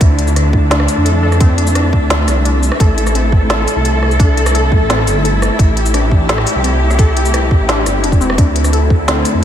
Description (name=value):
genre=half-time drum and bass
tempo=172 BPM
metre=4/4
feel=half-time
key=unclear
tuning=A4 = 436 Hz
part: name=warm chamber cello section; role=sustained chords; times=0.0-9.4 s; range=D3 to A4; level=-18 LUFS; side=left 1 dB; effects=sidechain pumping
part: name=phased detuned saw bass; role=bass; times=0.0-9.4 s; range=E1 to F2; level=-15 LUFS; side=equal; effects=phaser
part: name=electronic kick drum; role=drums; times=0.0-9.0 s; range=none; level=-11 LUFS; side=equal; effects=overdrive
part: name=organic electronic drum kit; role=drums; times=0.0-9.3 s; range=hi-hat, rim click, shaker, snare drum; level=-19 LUFS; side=equal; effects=none
part: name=flickering grainy texture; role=texture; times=0.0-9.4 s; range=A3 to E5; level=-25 LUFS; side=left 1 dB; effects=built-in reverb
part: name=warbly dusty pluck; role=arpeggios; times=0.7-9.2 s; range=C4 to A4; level=-21 LUFS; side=left 3 dB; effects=chorus, analog delay
room=light reverb, digital ambience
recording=none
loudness=-10 LUFS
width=side -10 dB against mid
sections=0.0-9.4 A section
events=none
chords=0.0 Dmadd9; 2.8 Am; 8.4 Dsus2